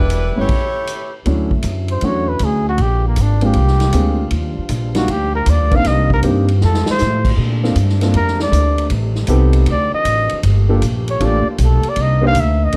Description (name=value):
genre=jazz, big band swing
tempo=157 BPM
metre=4/4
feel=swing 66% on 8ths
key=unclear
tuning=A4 = 438 Hz
part: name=edgy saxophone section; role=melody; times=0.0-1.1 s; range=G3 to Db5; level=-24 LUFS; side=equal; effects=none
part: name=upright bass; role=bass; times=0.0-12.8 s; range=E1 to Bb2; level=-18 LUFS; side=equal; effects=none
part: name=swinging big-band drum kit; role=drums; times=0.1-12.8 s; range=crash cymbal, hi-hat, kick drum, ride cymbal, snare drum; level=-25 LUFS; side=equal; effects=none
part: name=warm grand piano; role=accompaniment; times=0.4-12.8 s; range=A2 to C5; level=-22 LUFS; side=equal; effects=none
part: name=clear trombone section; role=sustained chords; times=1.2-12.8 s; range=C3 to G4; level=-30 LUFS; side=equal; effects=none
part: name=breathy trumpet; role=melody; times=1.9-12.8 s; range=Bb3 to F5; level=-22 LUFS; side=equal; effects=none
room=light reverb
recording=dark, warm production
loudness=-16 LUFS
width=mono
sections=0.0-1.3 A section; 1.3-12.8 B section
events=stop 0.5-1.3; trumpet solo 1.3-12.8; drum fill 6.6-7.0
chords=0.5 A7; 1.3 Dmaj9; 2.8 Bb7; 4.3 Ebmaj9; 5.9 Cm7; 6.6 Fadd9; 7.4 Bbmaj9; 8.9 Am7b5; 9.7 D7b9; 10.4 Gm9; 12.0 Cm9